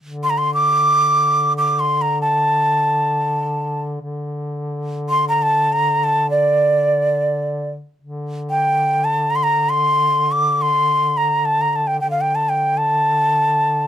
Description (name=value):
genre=Turkish makam ensemble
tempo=free time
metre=none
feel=none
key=unclear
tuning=A4 = 440 Hz
part: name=mellow duduk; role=drone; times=0.0-13.9 s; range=D3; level=-25 LUFS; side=left 1 dB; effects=none
part: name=breathy ney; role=melody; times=0.2-13.9 s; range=D5 to D6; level=-16 LUFS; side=equal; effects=none
room=little or no reverb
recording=close, detailed microphones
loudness=-15 LUFS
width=side -10 dB against mid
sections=0.0-8.0 A section; 8.0-13.9 A section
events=none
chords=none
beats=free time